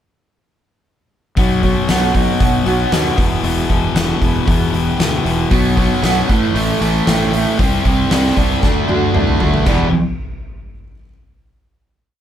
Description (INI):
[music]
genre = quiet-loud alternative rock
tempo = 116 BPM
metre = 4/4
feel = straight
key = E minor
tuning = A4 = 440 Hz
[part]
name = picked swing-style acoustic guitar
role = arpeggios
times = 1.4-9.9 s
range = A2 to G4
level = -24 LUFS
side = right 6 dB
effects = none
[part]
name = thick fuzz guitar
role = riff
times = 1.4-9.9 s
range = E2 to D4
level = -18 LUFS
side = left 4 dB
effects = distortion
[part]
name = fuzz fingered electric bass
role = bass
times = 1.4-9.9 s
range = E1 to E2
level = -20 LUFS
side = equal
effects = overdrive
[part]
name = oversized low-tuned drum kit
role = drums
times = 1.4-9.8 s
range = crash cymbal, hi-hat, kick drum, snare drum, toms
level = -18 LUFS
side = equal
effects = none
[part]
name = fuzz guitar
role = riff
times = 5.5-9.9 s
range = E2 to D4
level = -20 LUFS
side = right 7 dB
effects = distortion
[sound]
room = light reverb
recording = band playing live in one room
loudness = -13 LUFS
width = side -10 dB against mid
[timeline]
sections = 1.4-9.7 pre-chorus; 9.7-11.7 final chord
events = drum fill 8.6-9.7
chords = 1.4 B; 3.2 Em; 5.5 B5; 6.3 Am; 7.6 Cadd9; 8.6 D; 9.7 E5